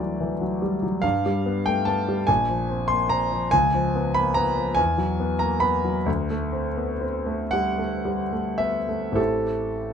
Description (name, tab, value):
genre	classical, impressionist solo piano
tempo	30-50 BPM (dotted quarters)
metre	6/8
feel	rubato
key	unclear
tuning	A4 = 440 Hz
part	clear concert grand piano	solo	0.0-9.9 s	A1 to C6	-21 LUFS	equal	none
room	little or no reverb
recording	close, detailed microphones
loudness	-21 LUFS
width	side -7 dB against mid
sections	0.0-9.9 A section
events	none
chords	0.0 Dadd9; 1.0 G9; 2.3 Bbsus2; 3.5 C#7; 4.8 Eadd9; 6.1 D7; 9.2 Am7